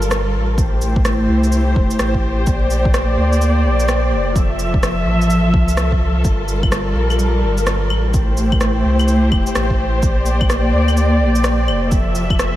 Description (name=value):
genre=future garage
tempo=127 BPM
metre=4/4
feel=swing 63% on 16ths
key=unclear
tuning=A4 = 442 Hz
part: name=dark studio string section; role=sustained chords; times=0.0-12.6 s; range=F3 to E5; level=-18 LUFS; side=equal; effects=sidechain pumping
part: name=warm sub bass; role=bass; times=0.0-12.6 s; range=E1 to D2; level=-18 LUFS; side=equal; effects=sidechain pumping
part: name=electronic shaker, rim click and claves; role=drums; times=0.0-12.5 s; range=none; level=-24 LUFS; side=equal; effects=none
part: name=electronic kick drum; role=drums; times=0.6-12.4 s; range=none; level=-18 LUFS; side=equal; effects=overdrive
room=moderate huge ambient reverb, RT60 4.8 s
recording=dreamy mix soaked in reverb, vinyl crackle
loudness=-14 LUFS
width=side -14 dB against mid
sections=0.0-12.6 A section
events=none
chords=0.0 Gm9; 0.6 Am7; 2.5 Bb69; 4.4 Fmaj7; 6.2 Gm9; 8.1 Am7; 10.0 Bb69; 11.9 Fmaj7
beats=0.11 | 0.58 1.05 1.52 2.00 | 2.47 2.94 3.41 3.89 | 4.36 4.83 5.30 5.78 | 6.25 6.72 7.19 7.67 | 8.14 8.61 9.08 9.55 | 10.03 10.50 10.97 11.45 | 11.92 12.39